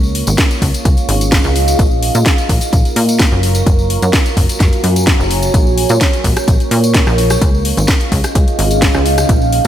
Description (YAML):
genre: piano house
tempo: 128 BPM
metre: 4/4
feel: straight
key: unclear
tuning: A4 = 440 Hz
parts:
  - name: plucky analog bass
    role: bass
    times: 0.0-9.7 s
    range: Gb1 to Bb2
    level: -15 LUFS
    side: equal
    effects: sidechain pumping
  - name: tambourine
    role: percussion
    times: 0.0-9.7 s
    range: none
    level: -26 LUFS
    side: left 2 dB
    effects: none
  - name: deep dark ambient pad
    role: texture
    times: 0.0-9.7 s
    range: Db4 to Db6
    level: -18 LUFS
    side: right 2 dB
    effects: chorus, built-in reverb, sidechain pumping
  - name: house drum kit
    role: drums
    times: 0.1-9.7 s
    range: hi-hat, rim click, snare drum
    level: -18 LUFS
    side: left 1 dB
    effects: overdrive
  - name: electronic kick drum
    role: drums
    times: 0.4-9.4 s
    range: none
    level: -13 LUFS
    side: equal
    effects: overdrive
room: light reverb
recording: none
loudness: -10 LUFS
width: side -11 dB against mid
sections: 0.0-9.7 A section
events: none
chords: 0.0 Dbadd9; 1.8 Bbm7; 3.4 Gbmaj9; 5.5 Bbm7; 7.4 Dbadd9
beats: 0.38 0.85 1.32 | 1.79 2.26 2.73 3.20 | 3.67 4.13 4.60 5.07 | 5.54 6.01 6.48 6.95 | 7.42 7.88 8.35 8.82 | 9.29